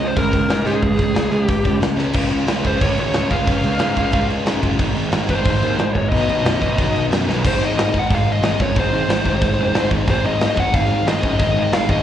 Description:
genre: punk rock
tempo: 182 BPM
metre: 4/4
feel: straight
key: Ab mixolydian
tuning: A4 = 440 Hz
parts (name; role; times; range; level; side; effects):
- dark smooth lead guitar; melody; 0.0-12.0 s; Ab4 to Gb5; -22 LUFS; equal; overdrive, slapback echo
- sludgy distorted guitar; riff; 0.0-12.0 s; Ab2 to F4; -22 LUFS; equal; overdrive, slapback echo
- fuzz picked electric bass; bass; 0.0-12.0 s; Gb1 to Ab2; -22 LUFS; equal; overdrive
- big rock drum kit; drums; 0.0-12.0 s; crash cymbal, hi-hat, kick drum, snare drum; -20 LUFS; equal; none
room: light reverb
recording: live gig heard through the venue's PA, cassette tape, club reverb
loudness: -16 LUFS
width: side -10 dB against mid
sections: 0.0-2.2 A section; 2.2-7.4 B section; 7.4-12.0 C section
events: drum fill 2.0, 7.3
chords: 0.0 Db5; 2.2 Db; 4.8 Ab; 6.1 B; 7.4 Ab

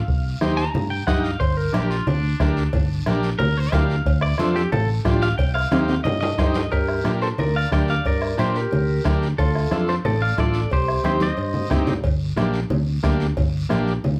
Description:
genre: latin, cumbia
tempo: 180 BPM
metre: 4/4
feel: straight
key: unclear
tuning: A4 = 440 Hz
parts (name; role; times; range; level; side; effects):
- clean electric guitar; melody; 0.0-11.7 s; D4 to Bb5; -28 LUFS; equal; spring reverb, slapback echo
- fingered electric bass; bass; 0.1-14.2 s; G1 to Bb2; -26 LUFS; equal; none
- bombo; percussion; 0.1-13.9 s; none; -26 LUFS; equal; none
- congas; percussion; 0.1-14.2 s; none; -30 LUFS; equal; none
- guiro; percussion; 0.1-14.2 s; none; -42 LUFS; equal; none
- overdriven combo organ; accompaniment; 0.4-13.9 s; Bb3 to Eb5; -28 LUFS; equal; none
- cowbell and timbales; percussion; 1.4-14.2 s; none; -32 LUFS; equal; none
room: wet studio ambience, RT60 0.5 s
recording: heard from further back in the room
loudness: -21 LUFS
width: mono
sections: 0.0-6.7 A section; 6.7-14.2 B section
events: clean electric guitar solo 0.0-6.7; drum fill 5.7-6.7, 11.0-12.0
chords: 0.1 Cm; 1.4 Gm; 4.1 Dm; 5.4 Cm; 6.7 Gm; 9.4 Dm; 10.7 Cm; 12.0 Gm

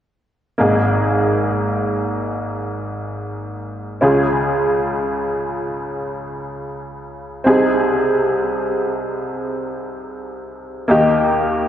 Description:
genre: pop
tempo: free time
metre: none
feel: none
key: Ab major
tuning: A4 = 440 Hz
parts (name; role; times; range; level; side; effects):
- clear upright piano; accompaniment; 0.6-11.7 s; Ab1 to Ab4; -17 LUFS; equal; none
room: wet church reverb, RT60 3.7 s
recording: recorded in a church or concert hall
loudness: -16 LUFS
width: side -10 dB against mid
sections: 0.6-11.7 A section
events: none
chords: 0.6 Absus2; 4.0 Db; 7.5 Ab/C; 10.9 Eb

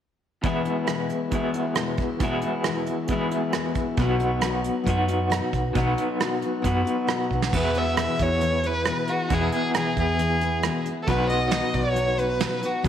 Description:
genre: folk rock and heartland rock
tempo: 136 BPM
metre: 4/4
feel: straight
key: E major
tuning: A4 = 439 Hz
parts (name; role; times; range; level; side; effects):
- picked steel-string acoustic guitar; accompaniment; 0.4-12.9 s; E2 to G#4; -31 LUFS; left 8 dB; none
- electric guitar through a small old amp; riff; 0.4-12.9 s; E2 to G#4; -26 LUFS; equal; tremolo
- soft brush drum kit; drums; 0.4-12.9 s; crash cymbal, hi-hat, kick drum, rim click, snare drum; -28 LUFS; right 3 dB; none
- hollow-body short-scale fingered electric bass; bass; 4.0-12.9 s; B1 to F#2; -27 LUFS; equal; none
- rich violin; melody; 7.5-12.9 s; F#4 to E5; -25 LUFS; right 1 dB; slapback echo
room: moderate echo chamber reverb, RT60 1.5 s, small room reverb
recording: 1960s-style stereo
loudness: -22 LUFS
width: side -9 dB against mid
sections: 0.4-7.5 A section; 7.5-12.9 B section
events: drum fill 7.3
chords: 0.4 E; 4.0 B; 7.5 E; 11.1 B

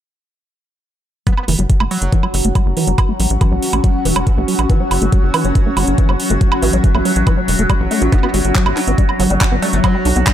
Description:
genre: psychedelic trance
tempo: 140 BPM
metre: 4/4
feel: straight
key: F# phrygian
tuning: A4 = 442 Hz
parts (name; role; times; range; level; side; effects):
- metallic wobble bass; second line; 1.3-2.3, 8.1-10.3 s; F#3 to B3; -29 LUFS; right 4 dB; chorus, sidechain pumping, high-pass filter, dub echo
- overtone-sweeping drone; sustained chords; 1.6-10.3 s; F#3 to F#4; -21 LUFS; equal; chorus, built-in reverb, phaser, sidechain pumping
- liquid acid bass; riff; 1.3-10.3 s; E3 to F#4; -21 LUFS; equal; chorus, auto-pan, sidechain pumping, digital delay
- electronic kick drum; drums; 1.3-10.3 s; none; -14 LUFS; equal; none
- garage drum kit; drums; 1.3-10.3 s; handclaps, hi-hat, woodblock; -21 LUFS; right 4 dB; none
- granular cloud pad; texture; 2.3-10.3 s; C#4 to F#5; -23 LUFS; equal; built-in reverb, sidechain pumping
- tight sequencer bass; bass; 1.5-10.2 s; E1 to B1; -17 LUFS; equal; none
room: light reverb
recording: none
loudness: -12 LUFS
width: side -10 dB against mid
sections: 1.3-10.3 A section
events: filter sweep on acid bass 1.3-10.3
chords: 1.3 F#5; 8.1 G5

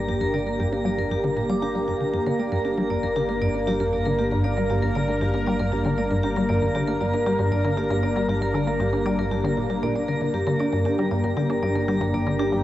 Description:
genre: ambient, sequencer-driven space music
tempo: 117 BPM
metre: 4/4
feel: straight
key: G minor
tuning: A4 = 440 Hz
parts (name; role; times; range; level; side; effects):
- sweeping resonant pad; sustained chords; 0.0-12.6 s; Bb3 to Bb4; -26 LUFS; equal; chorus
- vibraphone with hard mallets; arpeggios; 0.0-12.6 s; G4 to D6; -27 LUFS; right 1 dB; auto-pan, tape echo
- resonant blip pluck; riff; 0.0-12.6 s; G2 to D4; -25 LUFS; equal; chorus, tape echo
- analog drone; bass; 0.0-12.6 s; G1; -32 LUFS; equal; chorus
- twinkling granular texture; texture; 0.0-12.6 s; Bb5; -36 LUFS; equal; built-in reverb
room: wet huge ambient reverb, RT60 7.7 s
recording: worn, warbling old tape, cassette tape, warbly pitch drift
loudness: -21 LUFS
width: side -14 dB against mid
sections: 0.0-12.6 A section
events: filter sweep on synth arpeggio sound 0.0-12.6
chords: 0.0 Gm

